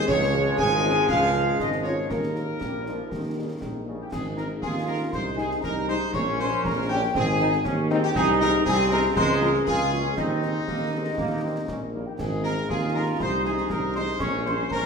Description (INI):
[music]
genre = military-style march for wind band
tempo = 119 BPM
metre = 2/4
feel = straight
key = Ab major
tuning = A4 = 439 Hz
[part]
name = clear trombone section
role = sustained chords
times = 0.0-14.9 s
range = Db3 to F4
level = -29 LUFS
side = right 2 dB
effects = none
[part]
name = mellow trumpet section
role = melody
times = 0.1-14.9 s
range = Eb4 to Ab5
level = -30 LUFS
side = left 1 dB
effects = none
[part]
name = hollow large flute ensemble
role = second line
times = 0.1-14.8 s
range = Bb4 to Db6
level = -29 LUFS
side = left 1 dB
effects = none
[part]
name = warm euphonium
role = second line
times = 0.1-3.6 s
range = Bb3 to Ab4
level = -30 LUFS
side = right 2 dB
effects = none
[part]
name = mellow tuba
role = bass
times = 0.1-14.9 s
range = Ab1 to Eb2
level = -27 LUFS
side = right 1 dB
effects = none
[part]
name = concert snare drum, clash cymbals and concert bass drum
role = drums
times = 0.1-14.9 s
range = none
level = -34 LUFS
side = left 1 dB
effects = none
[part]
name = mellow French horn section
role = accompaniment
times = 0.3-14.6 s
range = G3 to F4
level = -33 LUFS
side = left 3 dB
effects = none
[sound]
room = wet recital hall reverb, RT60 1.6 s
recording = recorded in a church or concert hall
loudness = -22 LUFS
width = side -5 dB against mid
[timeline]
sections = 0.0-4.1 A section; 4.1-14.9 B section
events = none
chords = 0.1 Db; 2.1 Eb; 4.1 Ab; 5.1 Ab/C; 6.1 Gdim/Bb; 7.1 Ab; 8.2 Ab/C; 9.2 Bbm7/Db; 10.2 Ab/Eb; 11.2 Eb; 12.2 Ab; 13.2 Ab/C; 14.2 Gdim/Bb